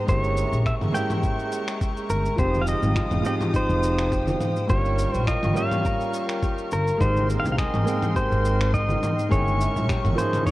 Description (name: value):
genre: sunset chillout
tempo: 104 BPM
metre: 4/4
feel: swing 54% on 16ths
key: unclear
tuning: A4 = 435 Hz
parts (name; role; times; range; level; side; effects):
- pedal steel guitar; melody; 0.0-10.5 s; Bb4 to G5; -27 LUFS; equal; vintage 12-bit sampler grit, ping-pong delay
- clear grand piano; accompaniment; 0.0-10.5 s; F3 to G5; -29 LUFS; right 2 dB; auto-pan
- dark chamber string section; sustained chords; 0.0-10.5 s; Ab3 to Eb6; -33 LUFS; equal; none
- upright bass; bass; 0.1-10.1 s; F1 to C2; -24 LUFS; equal; none
- dusty soul sampler-style drum kit; drums; 0.1-10.5 s; cabasa, finger snaps, toms; -30 LUFS; equal; none
- electronic kick drum; drums; 0.1-10.5 s; none; -26 LUFS; equal; none
- concert harp; arpeggios; 2.4-10.5 s; Eb4 to Bb4; -33 LUFS; left 4 dB; tape echo
- congas; percussion; 2.6-10.4 s; none; -32 LUFS; right 1 dB; none
room: light reverb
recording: worn, warbling old tape, cassette tape, warbly pitch drift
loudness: -21 LUFS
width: side -17 dB against mid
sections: 0.0-10.5 A section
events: none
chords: 0.1 Gdim7; 2.4 Fm9; 4.7 Gm7b5; 7.0 Abmaj9; 9.3 C7b9b13/G